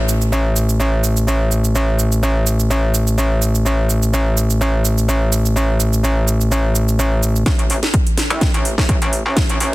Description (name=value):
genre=bass house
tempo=126 BPM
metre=4/4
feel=swing 54% on 16ths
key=A minor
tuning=A4 = 440 Hz
part: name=metallic wobble bass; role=bass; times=0.0-9.7 s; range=A1 to C2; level=-15 LUFS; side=equal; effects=chorus, sidechain pumping, high-pass filter
part: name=house drum kit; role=drums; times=0.1-9.7 s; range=cabasa, hi-hat, snare drum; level=-23 LUFS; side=right 2 dB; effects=overdrive
part: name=electronic kick drum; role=drums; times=7.5-9.5 s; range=none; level=-17 LUFS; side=equal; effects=overdrive
room=little or no reverb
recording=dense, heavily limited modern master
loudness=-14 LUFS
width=side -19 dB against mid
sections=0.0-7.5 A section; 7.5-9.7 B section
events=build-up 7.5-9.7; drum fill 7.5-9.7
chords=none